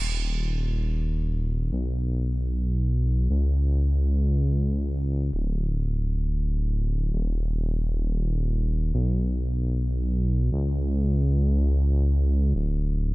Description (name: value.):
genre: UK garage.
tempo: free time.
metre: none.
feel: none.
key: unclear.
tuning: A4 = 440 Hz.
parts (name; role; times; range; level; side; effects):
dark detuned saw bass; bass; 0.0-13.1 s; D1 to Db2; -22 LUFS; equal; none.
room: digital ambience.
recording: none.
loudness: -23 LUFS.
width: side -21 dB against mid.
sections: 0.0-13.1 A section.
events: none.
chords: none.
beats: free time.